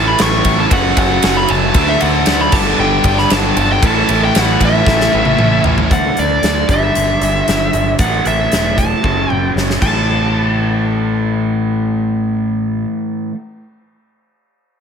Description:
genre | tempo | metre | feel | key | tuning
hard rock | 115 BPM | 4/4 | straight | A mixolydian | A4 = 438 Hz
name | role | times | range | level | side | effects
dark smooth lead guitar | melody | 0.0-12.8 s | D5 to C#6 | -17 LUFS | equal | overdrive, tape echo
sweeping resonant pad | sustained chords | 0.0-5.9 s | F#3 to E5 | -27 LUFS | right 1 dB | none
crunchy overdriven guitar | riff | 0.0-13.3 s | F#2 to D4 | -18 LUFS | equal | spring reverb
high-gain distorted guitar | riff | 0.0-5.9 s | F#2 to E4 | -19 LUFS | equal | distortion
growling picked electric bass | bass | 0.0-12.8 s | E1 to D2 | -19 LUFS | equal | overdrive
huge arena drum kit | drums | 0.2-9.9 s | crash cymbal, hi-hat, kick drum, ride cymbal, snare drum, toms | -17 LUFS | equal | none
room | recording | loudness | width
light reverb, small room ambience | none | -12 LUFS | side -7 dB against mid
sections
0.0-5.9 A section; 5.9-10.1 B section; 10.1-14.3 C section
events
drum fill 4.9-5.9, 9.0-10.1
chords
0.0 A; 0.7 F#m; 1.8 D; 2.5 G; 3.8 A; 5.9 D5; 6.7 G5; 8.0 A5; 9.0 F#m; 9.8 A5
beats
0.19 0.71 1.23 | 1.75 2.27 2.79 3.31 | 3.83 4.35 4.87 5.38 | 5.90 6.42 6.95 7.47 | 7.99 8.51 9.03 9.56 | 10.08 10.60 11.13 11.65 | 12.18 12.70 13.22

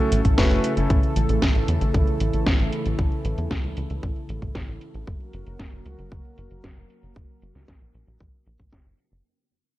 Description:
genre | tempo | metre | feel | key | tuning
italo disco | 115 BPM | 4/4 | straight | unclear | A4 = 441 Hz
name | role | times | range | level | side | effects
warm analog pad | sustained chords | 0.0-9.2 s | C#3 to A#4 | -29 LUFS | right 1 dB | chorus
warm electric grand piano | stabs | 0.0-1.0 s | A3 to B4 | -26 LUFS | left 2 dB | digital delay
tight sequencer bass | bass | 0.1-9.2 s | F#1 to E2 | -25 LUFS | equal | none
house drum kit | drums | 0.1-9.2 s | hi-hat, snare drum | -30 LUFS | equal | low-pass filter on hats, low-pass filter on snare, low-pass filter on room
electronic kick drum | drums | 0.2-8.8 s | none | -24 LUFS | equal | none
room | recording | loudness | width
light reverb | dark, warm production | -20 LUFS | side -16 dB against mid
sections
0.0-9.2 A section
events
fade-out 0.0-9.2; filter sweep on drum 0.0-9.2; filter sweep on analog synth pad 0.0-9.2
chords
0.0 F#m; 0.9 A; 5.1 F#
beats
0.38 | 0.90 1.42 1.94 2.46 | 2.99 3.51 4.03 4.55 | 5.07 5.59 6.12 6.64 | 7.16 7.68 8.20 8.73

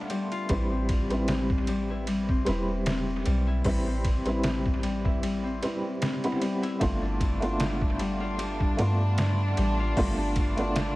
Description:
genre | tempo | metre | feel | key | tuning
trip hop | 76 BPM | 4/4 | swing 55% on 16ths | A minor | A4 = 440 Hz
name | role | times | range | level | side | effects
felt-muted upright piano | accompaniment | 0.0-11.0 s | G3 to B4 | -31 LUFS | right 1 dB | tremolo, tape echo
Celtic harp | arpeggios | 0.0-11.0 s | G3 to F4 | -32 LUFS | left 2 dB | low-pass filter, dub echo
trip hop sampler-style drum kit | drums | 0.1-11.0 s | hi-hat, kick drum, ride cymbal, snare drum | -30 LUFS | equal | analog delay
soft 808-style bass | bass | 0.5-11.0 s | E1 to G2 | -29 LUFS | equal | none
rich chamber string section | sustained chords | 6.8-11.0 s | D4 | -35 LUFS | right 1 dB | none
room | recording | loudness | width
light reverb | echo-heavy mix, vinyl crackle | -24 LUFS | side -19 dB against mid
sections
0.0-11.0 A section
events
none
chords
0.5 Am7; 6.8 G7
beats
| 0.49 1.28 2.07 2.86 | 3.65 4.44 5.23 6.02 | 6.81 7.60 8.39 9.18 | 9.97 10.76

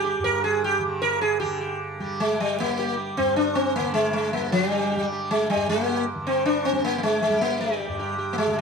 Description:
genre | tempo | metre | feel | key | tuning
indian classical | 155 BPM | 4/4 | straight | G raga bhairavi | A4 = 440 Hz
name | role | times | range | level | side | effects
sitar | melody | 0.0-8.6 s | G3 to Bb4 | -22 LUFS | equal | none
tanpura | drone | 0.0-8.6 s | G2 to G3 | -32 LUFS | right 1 dB | none
room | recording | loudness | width
moderate recital hall reverb, RT60 1.5 s | close, detailed microphones | -22 LUFS | side -5 dB against mid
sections
0.0-1.4 A section; 1.4-8.6 B section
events
none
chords
none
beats
0.23 0.63 1.02 | 1.41 1.80 2.19 2.58 | 2.96 3.35 3.74 4.13 | 4.52 4.90 5.29 5.68 | 6.07 6.45 6.84 7.22 | 7.61 8.00 8.38

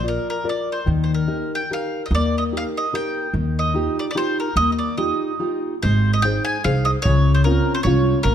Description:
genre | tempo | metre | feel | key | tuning
italian folk, Italian serenade | 146 BPM | 3/4 | swing 54% on 8ths, rubato | Eb major | A4 = 442 Hz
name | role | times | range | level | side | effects
bowl-back mandolin | melody | 0.0-8.3 s | Bb4 to Ab5 | -24 LUFS | right 1 dB | none
nylon-string guitar | accompaniment | 0.0-8.3 s | Db3 to D5 | -22 LUFS | left 2 dB | none
upright bass | bass | 0.0-8.3 s | Ab1 to Eb2 | -20 LUFS | right 1 dB | none
room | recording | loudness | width
light reverb | none | -18 LUFS | side -9 dB against mid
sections
0.0-5.8 A section; 5.8-8.3 B section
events
none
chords
0.0 Bb; 0.9 Eb; 3.3 Ebadd9; 5.8 Ab; 7.1 Dbmaj7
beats
0.05 0.46 | 0.88 1.29 1.71 | 2.12 2.53 2.94 | 3.34 3.75 4.16 | 4.57 4.98 5.40 | 5.83 6.24 6.65 | 7.05 7.46 7.86 | 8.25

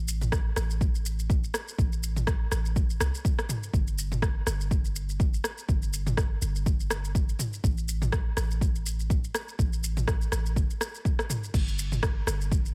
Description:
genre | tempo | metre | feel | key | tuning
afro house | 123 BPM | 4/4 | swing 56% on 16ths | unclear | A4 = 440 Hz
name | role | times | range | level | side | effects
warm 808-style bass | bass | 0.0-12.7 s | G1 to C2 | -32 LUFS | equal | sidechain pumping
deep house drum kit | drums | 0.1-12.7 s | crash cymbal, rim click, shaker, toms | -34 LUFS | equal | small room ambience
electronic kick drum | drums | 0.3-12.6 s | none | -29 LUFS | equal | small room ambience
room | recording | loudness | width
little or no reverb | none | -28 LUFS | mono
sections
0.0-12.7 A section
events
none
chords
none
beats
0.32 0.81 1.30 | 1.78 2.27 2.76 3.25 | 3.74 4.22 4.71 5.20 | 5.69 6.17 6.66 7.15 | 7.64 8.13 8.61 9.10 | 9.59 10.08 10.56 11.05 | 11.54 12.03 12.52

